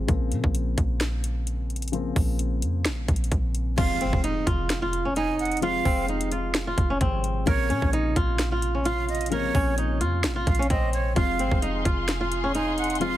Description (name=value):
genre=hip hop, trap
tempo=130 BPM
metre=4/4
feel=half-time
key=F minor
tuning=A4 = 440 Hz
part: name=dark concert grand piano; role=accompaniment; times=0.0-13.2 s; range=C3 to C4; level=-32 LUFS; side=left 5 dB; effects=low-pass filter
part: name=clean 808-style bass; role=bass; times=0.0-13.2 s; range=F1 to Bb2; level=-27 LUFS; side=equal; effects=none
part: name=trap drum kit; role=drums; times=0.1-13.1 s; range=crash cymbal, hi-hat, kick drum, snare drum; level=-26 LUFS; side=equal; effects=none
part: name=flamenco guitar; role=melody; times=3.8-13.2 s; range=C4 to Bb4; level=-27 LUFS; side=equal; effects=low-pass filter, digital delay
part: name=breathy jazz flute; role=second line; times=3.8-13.2 s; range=Db5 to Ab5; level=-30 LUFS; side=right 6 dB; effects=digital delay
part: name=impact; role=sound effects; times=3.8-5.6 s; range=none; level=-36 LUFS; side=right 1 dB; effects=none
part: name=dark symphonic string section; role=sustained chords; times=11.2-13.2 s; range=Ab4 to C6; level=-32 LUFS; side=left 3 dB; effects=none
room=little or no reverb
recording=heavily compressed radio sound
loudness=-22 LUFS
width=side -14 dB against mid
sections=0.0-3.8 A section; 3.8-13.2 B section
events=impact 3.8-5.6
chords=0.1 Bbmadd9; 3.8 Fm; 7.5 Bbmadd9; 11.2 Fm